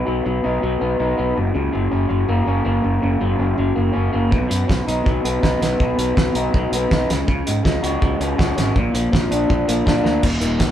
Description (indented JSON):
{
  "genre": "indie rock",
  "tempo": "162 BPM",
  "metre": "4/4",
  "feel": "straight",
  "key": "unclear",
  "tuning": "A4 = 442 Hz",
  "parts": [
    { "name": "electric guitar through a small old amp", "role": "riff", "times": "0.0-10.7 s", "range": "Eb2 to Gb4", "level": "-20 LUFS", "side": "left 1 dB", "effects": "none" },
    { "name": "fuzz fingered electric bass", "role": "bass", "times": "0.0-10.7 s", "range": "Eb1 to Ab2", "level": "-22 LUFS", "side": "equal", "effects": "overdrive" },
    { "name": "cloth-damped thuddy drum kit", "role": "drums", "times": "4.3-10.7 s", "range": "crash cymbal, hi-hat, kick drum, snare drum", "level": "-20 LUFS", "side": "right 1 dB", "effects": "none" }
  ],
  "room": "moderate large studio reverb, RT60 0.9 s",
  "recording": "band playing live in one room",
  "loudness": "-16 LUFS",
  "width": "side -10 dB against mid",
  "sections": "0.0-10.2 A section",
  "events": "drum fill 10.0",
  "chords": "0.0 B; 1.4 Gb; 4.3 B; 7.1 Dbsus4; 8.8 Bb"
}